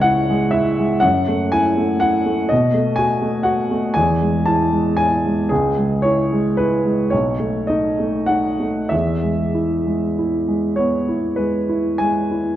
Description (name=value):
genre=classical, romantic nocturne for solo piano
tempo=30-42 BPM (dotted quarters)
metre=6/8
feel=rubato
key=E major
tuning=A4 = 440 Hz
part: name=warm upright piano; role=solo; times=0.0-12.6 s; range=B1 to A5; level=-16 LUFS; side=equal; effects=none
room=moderate concert hall reverb, RT60 1.9 s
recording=dark, warm production, nothing above 7.5 kHz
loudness=-16 LUFS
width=side -12 dB against mid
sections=0.0-12.6 A section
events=none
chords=0.0 C#m; 1.0 F#m7; 2.5 B5; 4.0 E; 5.5 C#m; 7.1 B7; 8.9 E